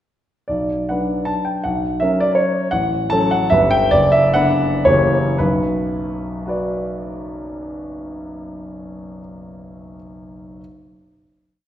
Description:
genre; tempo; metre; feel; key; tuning
classical, romantic triple-time dance for piano with dotted rhythms; 106-173 BPM; 3/4; rubato; B minor; A4 = 439 Hz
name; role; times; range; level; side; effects
warm grand piano; solo; 0.5-10.6 s; F#1 to A5; -17 LUFS; equal; none
room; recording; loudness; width
wet recital hall reverb, RT60 1.5 s; heard from further back in the room; -15 LUFS; side -11 dB against mid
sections
0.5-5.4 A section; 5.4-8.5 final chord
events
slowing down 2.2-5.4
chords
0.5 Bm; 1.6 F#/B; 2.7 F#m/A; 3.5 Em/G; 3.9 Bm/F#; 4.8 F#7b9; 5.4 Bm

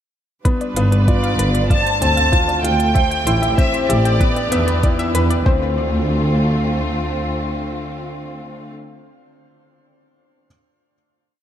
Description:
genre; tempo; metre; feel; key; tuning
piano and strings electronica; 96 BPM; 4/4; straight; D dorian; A4 = 445 Hz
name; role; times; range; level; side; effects
analog pluck; arpeggios; 0.4-5.7 s; B4 to G5; -28 LUFS; left 4 dB; chorus, sidechain pumping, ping-pong delay, shimmer reverb
muted studio string section; sustained chords; 0.5-8.7 s; D3 to B4; -26 LUFS; equal; shimmer reverb
felt-muted upright piano; riff; 0.5-10.5 s; B3 to D5; -22 LUFS; left 2 dB; ping-pong delay, shimmer reverb
electronic hi-hat; drums; 0.5-5.4 s; none; -28 LUFS; right 1 dB; none
electronic kick drum; drums; 0.5-5.6 s; none; -17 LUFS; equal; none
dark studio double bass section; bass; 0.8-7.3 s; G1 to E2; -19 LUFS; equal; sidechain pumping
clear studio violin section; melody; 1.1-4.8 s; D5 to A5; -21 LUFS; right 2 dB; shimmer reverb
room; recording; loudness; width
light reverb, small room ambience; none; -15 LUFS; side -10 dB against mid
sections
0.5-5.5 build; 5.5-8.0 final chord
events
build-up 0.5-5.5; filter sweep on synth arpeggio sound 0.5-5.5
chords
0.5 G7; 1.7 Dm7; 3.0 Am7; 4.2 Em7; 5.5 Dm7

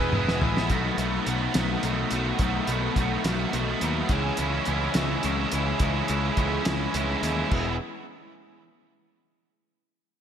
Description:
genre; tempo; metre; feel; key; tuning
indie rock; 70 BPM (dotted quarters); 6/8; straight; E major; A4 = 442 Hz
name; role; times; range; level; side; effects
combo organ; sustained chords; 0.0-0.7, 4.1-7.8 s; G#4 to D#6; -37 LUFS; equal; none
overdriven electric guitar; riff; 0.0-7.8 s; B2 to G#4; -30 LUFS; left 9 dB; analog chorus
overdriven electric guitar; riff; 0.0-7.8 s; E2 to F#4; -28 LUFS; right 6 dB; ensemble chorus, digital delay
growling picked electric bass; bass; 0.0-7.8 s; E1 to D#2; -29 LUFS; equal; overdrive
cloth-damped thuddy drum kit; drums; 0.1-7.7 s; crash cymbal, hi-hat, kick drum, snare drum, toms; -29 LUFS; equal; none
room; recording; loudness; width
moderate lush hall reverb, RT60 2.1 s; bright 1980s-style digital production; -23 LUFS; side -8 dB against mid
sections
0.7-7.5 A section; 7.5-9.2 B section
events
drum fill 0.0-0.7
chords
0.0 Emaj7; 0.7 B7; 4.1 C#madd9; 7.5 E

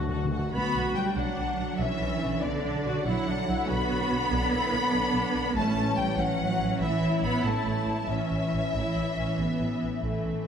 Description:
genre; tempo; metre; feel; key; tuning
cinematic, heroic adventure film score; 95 BPM (dotted quarters); 12/8; straight; unclear; A4 = 440 Hz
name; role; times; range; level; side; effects
warm symphonic violin section; melody; 0.0-10.5 s; D5 to B5; -34 LUFS; left 5 dB; none
warm clarinet; second line; 0.0-0.5 s; F#4; -41 LUFS; left 3 dB; none
warm symphonic violin section; second line; 0.0-10.5 s; A4 to B5; -34 LUFS; left 2 dB; none
warm studio viola section; accompaniment; 0.0-10.5 s; A3 to F#4; -34 LUFS; right 1 dB; none
dark trombone section; sustained chords; 0.0-10.4 s; A2 to C#4; -34 LUFS; equal; none
rich symphonic double bass section; bass; 0.0-10.3 s; A1 to D2; -33 LUFS; right 2 dB; none
warm chamber cello section; bass; 0.0-10.4 s; D3 to B3; -30 LUFS; right 2 dB; none
timpani; percussion; 0.0-0.5 s; D3; -33 LUFS; left 2 dB; none
room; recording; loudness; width
moderate concert hall reverb, RT60 2.1 s; dark, warm production; -25 LUFS; side -7 dB against mid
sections
0.5-10.5 A section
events
timpani fill 0.0-0.5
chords
0.0 D; 0.5 Bm; 5.6 A

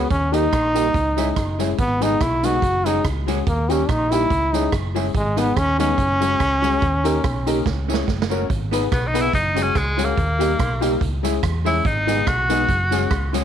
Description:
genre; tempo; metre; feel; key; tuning
ska; 143 BPM; 4/4; swing 55% on 8ths; G# minor; A4 = 438 Hz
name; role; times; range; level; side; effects
brilliant trombone; melody; 0.0-8.0 s; G#3 to F#4; -21 LUFS; equal; none
warm upright piano; stabs; 0.0-13.4 s; G3 to C#5; -25 LUFS; left 14 dB; none
hollow-body short-scale fingered electric bass; bass; 0.0-13.4 s; F#1 to E2; -24 LUFS; equal; none
swinging big-band drum kit; drums; 0.1-13.4 s; hi-hat, kick drum, rim click, snare drum; -25 LUFS; right 3 dB; none
vintage hollow-body jazz guitar; accompaniment; 0.3-13.4 s; B3 to E5; -28 LUFS; right 15 dB; none
tambourine; percussion; 0.3-13.4 s; none; -37 LUFS; right 15 dB; none
bright tenor saxophone; melody; 8.9-13.3 s; G#3 to F#4; -22 LUFS; equal; none
room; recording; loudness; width
small room ambience; 1960s-style stereo with parts hard left and right; -17 LUFS; side -9 dB against mid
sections
0.0-8.5 A section; 8.5-13.4 B section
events
drum fill 7.7-8.5; tenor saxophone solo 8.5-13.4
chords
0.1 D#; 0.9 C#m; 1.8 G#m; 2.6 F#sus2; 3.5 D#; 4.3 C#m; 5.1 G#m; 6.0 F#sus2; 6.8 D#; 7.7 C#m; 8.1 F#; 8.5 G#m; 9.3 F#sus2; 10.2 D#; 11.0 C#m; 11.9 G#m; 12.7 F#sus2

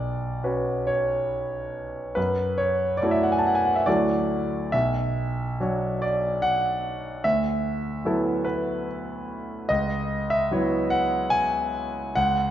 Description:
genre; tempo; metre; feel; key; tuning
classical, impressionist solo piano; 72 BPM; 3/4; uneven beats, rubato; B dorian; A4 = 439 Hz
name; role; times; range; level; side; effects
bright concert grand piano; solo; 0.0-12.5 s; B1 to A5; -22 LUFS; equal; none
room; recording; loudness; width
wet scoring stage reverb, RT60 1.8 s; dark, warm production, nothing above 7.8 kHz; -22 LUFS; side -11 dB against mid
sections
0.0-12.5 A section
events
none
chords
0.0 Bmadd9; 2.2 F#m7; 3.9 Dadd9; 4.7 Bmadd9; 7.2 D69; 9.7 C#m7

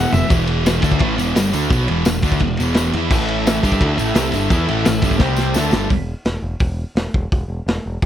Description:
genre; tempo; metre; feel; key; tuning
garage rock duo or trio; 171 BPM; 4/4; straight; unclear; A4 = 440 Hz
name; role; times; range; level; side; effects
overdriven combo organ; sustained chords; 0.0-0.3, 3.1-5.9 s; E4 to A5; -26 LUFS; equal; none
thick fuzz guitar; riff; 0.0-5.9 s; E2 to G4; -19 LUFS; equal; distortion
growling picked electric bass; bass; 0.0-8.1 s; E1 to G2; -22 LUFS; equal; overdrive
crunchy breakbeat drum kit; drums; 0.1-8.1 s; crash cymbal, hi-hat, kick drum, ride cymbal, snare drum, toms; -19 LUFS; equal; none
tambourine; percussion; 0.1-5.8 s; none; -32 LUFS; left 6 dB; none
room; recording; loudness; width
little or no reverb; none; -15 LUFS; side -11 dB against mid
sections
0.3-5.9 A section; 5.9-8.1 B section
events
drum fill 0.0, 5.2-5.9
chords
0.3 E5; 3.1 A5; 5.2 C5; 5.6 A5; 5.9 N.C.

